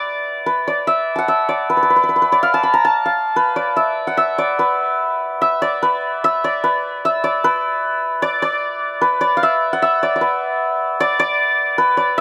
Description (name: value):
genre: indian classical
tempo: 148 BPM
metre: 7/4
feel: straight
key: unclear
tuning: A4 = 439 Hz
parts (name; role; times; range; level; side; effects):
- santur; solo; 0.0-12.2 s; Cb5 to Cb6; -18 LUFS; equal; none
room: little or no reverb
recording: close, detailed microphones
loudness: -18 LUFS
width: mono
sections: 0.0-7.4 A section; 7.4-12.2 B section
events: speeding up 0.0-12.2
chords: none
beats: 0.04 0.46 0.88 1.29 | 1.71 2.12 2.54 2.95 3.36 3.77 4.18 | 4.59 5.00 5.41 5.81 6.21 6.62 7.02 | 7.42 7.83 8.23 8.63 9.03 9.42 9.82 | 10.21 10.61 11.00 11.40 11.79 12.18